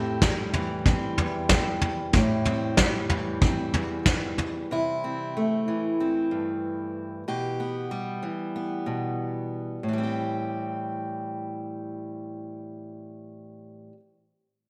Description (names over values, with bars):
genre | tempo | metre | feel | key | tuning
indie folk with a building arrangement | 94 BPM | 4/4 | straight | A minor | A4 = 440 Hz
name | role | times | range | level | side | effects
fingerpicked steel-string acoustic guitar | accompaniment | 0.0-14.0 s | E2 to G4 | -31 LUFS | equal | none
soft brush drum kit | drums | 0.2-4.5 s | kick drum, snare drum, toms | -26 LUFS | equal | none
room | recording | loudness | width
moderate echo chamber reverb, RT60 1.4 s, small room ambience | none | -27 LUFS | mono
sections
0.0-9.8 A section; 9.8-12.4 B section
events
none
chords
0.0 Am7; 4.7 C6; 7.3 Em/B; 9.8 Am7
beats
0.22 0.86 1.50 | 2.14 2.78 3.42 4.06 | 4.70 5.34 5.98 6.62 | 7.26 7.90 8.54 9.19 | 9.83 10.47 11.11 11.75